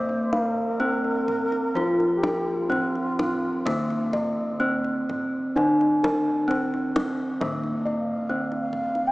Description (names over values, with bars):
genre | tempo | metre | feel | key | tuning
Javanese gamelan | 63-70 BPM | 4/4 | straight | C slendro | A4 = 441 Hz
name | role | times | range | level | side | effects
gamelan-type bronze metallophone | melody | 0.0-9.1 s | Bb3-40c to F4-20c | -25 LUFS | equal | none
mellow low xiao | second line | 0.0-9.1 s | F4-20c to G5+23c | -29 LUFS | equal | none
gamelan-type bronze metallophone | accompaniment | 0.0-9.1 s | D3+40c to Bb3-40c | -34 LUFS | right 1 dB | none
gamelan-type bossed gongs | arpeggios | 0.0-8.8 s | Bb4-40c to F5-20c | -32 LUFS | left 2 dB | none
gamelan-type bossed gongs | bass | 0.0-9.1 s | C2 to F4-20c | -32 LUFS | equal | none
kendang | percussion | 0.1-9.1 s | none | -33 LUFS | equal | none
room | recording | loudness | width
wet cathedral reverb, RT60 5.8 s | recorded in a church or concert hall, small speaker sound | -22 LUFS | side -19 dB against mid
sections
0.0-9.1 A section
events
none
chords
none